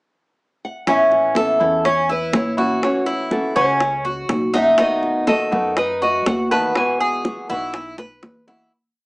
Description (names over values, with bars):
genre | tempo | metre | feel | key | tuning
latin, Cuban son and guajira | 122 BPM | 4/4 | straight | A major | A4 = 438 Hz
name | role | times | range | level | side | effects
nylon-string guitar | melody | 0.6-8.2 s | A4 to A5 | -19 LUFS | equal | none
flamenco guitar | accompaniment | 0.9-8.7 s | B2 to F#4 | -23 LUFS | equal | none
Cuban tres | arpeggios | 0.9-8.7 s | C#4 to B4 | -21 LUFS | equal | none
upright bass | bass | 0.9-8.7 s | A1 to F#2 | -30 LUFS | equal | none
bongos | percussion | 0.9-8.6 s | none | -25 LUFS | equal | none
congas | percussion | 0.9-8.7 s | none | -26 LUFS | equal | none
room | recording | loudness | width
light reverb | small speaker sound | -16 LUFS | side -38 dB against mid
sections
0.0-0.9 pickup bar; 0.9-8.7 verse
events
fade-out 6.8-8.7; drum fill 8.0-8.7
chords
0.0 N.C.; 0.9 Aadd9; 2.8 F#m7; 4.8 B7; 6.8 Eadd9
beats
0.39 | 0.87 1.36 1.85 2.34 | 2.83 3.32 3.81 4.30 | 4.79 5.28 5.77 6.26 | 6.76 7.25 7.74 8.23